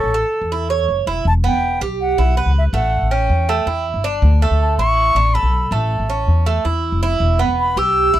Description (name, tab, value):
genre	latin, Cuban son and guajira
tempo	161 BPM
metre	4/4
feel	straight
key	unclear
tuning	A4 = 440 Hz
part	reedy concert flute	melody	0.0-8.2 s	A4 to E6	-19 LUFS	left 2 dB	none
part	Cuban tres	arpeggios	0.0-8.2 s	A3 to C#5	-20 LUFS	right 6 dB	none
part	upright bass	bass	0.0-8.2 s	E1 to E2	-17 LUFS	equal	none
room	little or no reverb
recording	dry, close 1970s-style studio recording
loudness	-15 LUFS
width	side -12 dB against mid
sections	0.0-1.3 A section; 1.3-8.2 B section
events	none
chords	0.0 A; 1.3 Em; 2.7 A7; 4.2 Dsus2; 5.7 A; 7.2 Em